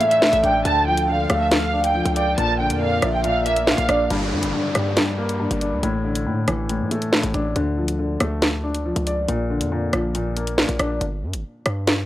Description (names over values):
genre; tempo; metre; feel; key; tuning
hip hop, drill; 139 BPM; 4/4; half-time; D minor; A4 = 440 Hz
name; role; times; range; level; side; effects
warm studio violin section; melody; 0.0-4.1 s; E5 to A5; -22 LUFS; right 1 dB; low-pass filter
warm velvety synth lead; second line; 0.0-4.1 s; D5 to G5; -22 LUFS; right 1 dB; chorus, analog delay
dark grand piano; accompaniment; 0.0-11.0 s; G2 to D5; -24 LUFS; left 2 dB; low-pass filter
airy breathy pad; sustained chords; 0.0-4.1 s; F3 to F5; -30 LUFS; equal; chorus
drill drum kit; drums; 0.0-12.0 s; hi-hat, rim click, snare drum; -21 LUFS; equal; none
hard-hitting 808-style bass; bass; 0.3-12.1 s; G1 to A2; -26 LUFS; equal; none
downlifter; sound effects; 4.1-7.6 s; none; -31 LUFS; equal; none
room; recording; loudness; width
light reverb; dry, gritty hardware recording, transformer saturation; -18 LUFS; side -14 dB against mid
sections
0.0-4.1 A section; 4.1-12.1 B section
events
none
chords
0.0 Asus4; 0.7 Dm; 2.4 Bb; 4.1 Gm; 5.8 Asus4; 7.6 Dm; 9.3 Bb; 11.0 G5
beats
0.22 | 0.65 1.08 1.51 1.95 | 2.38 2.81 3.24 3.67 | 4.10 4.54 4.97 5.40 | 5.83 6.26 6.69 7.13 | 7.56 7.99 8.42 8.85 | 9.28 9.72 10.15 10.58 | 11.01 11.44 11.87